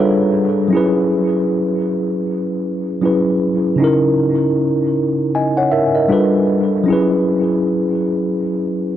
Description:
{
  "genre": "hip hop",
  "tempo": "78 BPM",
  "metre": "4/4",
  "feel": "swing 59% on 16ths",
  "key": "unclear",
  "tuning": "A4 = 440 Hz",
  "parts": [
    { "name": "mellow tine electric piano", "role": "solo", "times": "0.0-9.0 s", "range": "C#3 to G#5", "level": "-14 LUFS", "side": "equal", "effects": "medium stereo tremolo, analog delay" }
  ],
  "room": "moderate plate reverb, RT60 3.0 s",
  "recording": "echo-heavy mix",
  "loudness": "-14 LUFS",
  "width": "side -11 dB against mid",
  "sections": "0.0-9.0 A section",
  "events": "none",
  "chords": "0.0 G9; 0.7 F#7sus4; 3.8 C#m69; 6.1 G9; 6.9 F#7sus4"
}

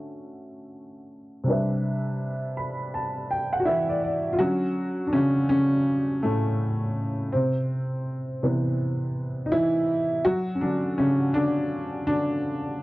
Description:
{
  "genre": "hip hop",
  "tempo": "82 BPM",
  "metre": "4/4",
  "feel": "swing 60% on 16ths",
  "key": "D major",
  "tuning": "A4 = 439 Hz",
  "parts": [
    { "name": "warm upright piano", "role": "solo", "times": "0.0-12.8 s", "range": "A2 to B5", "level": "-23 LUFS", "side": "equal", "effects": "low-pass filter" }
  ],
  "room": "wet small room reverb, RT60 0.6 s",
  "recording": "dark, warm production, low-pass filter",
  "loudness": "-23 LUFS",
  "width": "side -18 dB against mid",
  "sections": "0.0-4.4 A section; 4.4-12.8 B section",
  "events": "filter sweep 0.0-4.4; upright piano fill 2.2-4.4; upright piano solo 4.4-12.8",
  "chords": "0.0 Dmaj9; 1.5 Cmaj9; 4.4 Dmaj7; 7.3 Cmaj7; 10.2 Dmaj7"
}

